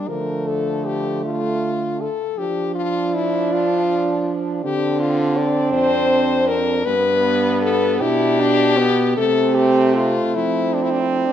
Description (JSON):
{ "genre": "classical, lyrical piece for horn quartet", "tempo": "53 BPM (dotted quarters)", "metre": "6/8", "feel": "uneven beats, rubato", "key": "D minor, F major from 4.7 s", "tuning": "A4 = 440 Hz", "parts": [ { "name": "clear French horn", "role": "melody", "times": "0.0-11.3 s", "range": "D4 to D5", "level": "-20 LUFS", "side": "left 4 dB", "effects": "none" }, { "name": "mellow French horn", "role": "second line", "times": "0.0-11.3 s", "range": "F3 to D4", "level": "-23 LUFS", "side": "right 5 dB", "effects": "none" }, { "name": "mellow French horn", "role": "bass", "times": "0.0-11.3 s", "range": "F2 to F3", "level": "-24 LUFS", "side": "right 2 dB", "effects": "none" }, { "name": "warm French horn", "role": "accompaniment", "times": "0.1-11.3 s", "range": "A3 to E4", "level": "-24 LUFS", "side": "equal", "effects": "none" } ], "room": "moderate scoring stage reverb, RT60 1.6 s", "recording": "nothing above 10.6 kHz", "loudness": "-16 LUFS", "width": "side -10 dB against mid", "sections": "0.0-11.3 A section", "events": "none", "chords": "0.1 Dm; 2.4 Dm/F; 6.9 G; 9.2 Fadd9/C; 10.4 F" }